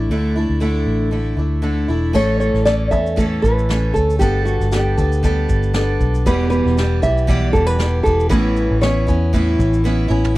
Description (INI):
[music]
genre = acoustic pop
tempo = 117 BPM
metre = 4/4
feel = swing 55% on 16ths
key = unclear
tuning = A4 = 439 Hz
[part]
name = nylon-string guitar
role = melody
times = 0.0-10.1 s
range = F#4 to E5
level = -20 LUFS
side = equal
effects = none
[part]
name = picked steel-string acoustic guitar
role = accompaniment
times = 0.0-10.4 s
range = E2 to A4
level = -20 LUFS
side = equal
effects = none
[part]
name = vintage muted fingered electric bass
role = bass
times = 0.0-10.3 s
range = E1 to E2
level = -18 LUFS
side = equal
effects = none
[part]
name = vintage brush drum kit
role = drums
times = 2.1-10.4 s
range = crash cymbal, kick drum, shaker, snare drum, toms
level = -22 LUFS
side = equal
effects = none
[sound]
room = little or no reverb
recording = dry, close 1970s-style studio recording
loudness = -15 LUFS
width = side -18 dB against mid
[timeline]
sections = 0.0-2.2 A section; 2.2-10.4 B section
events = drum fill 9.8-10.4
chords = 0.0 Dsus2; 2.2 A; 4.2 Gadd9; 6.3 Em; 8.3 Aadd9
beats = | 0.09 0.61 1.12 1.64 | 2.15 2.67 3.18 3.70 | 4.21 4.72 5.24 5.75 | 6.26 6.77 7.29 7.80 | 8.31 8.82 9.34 9.85 | 10.36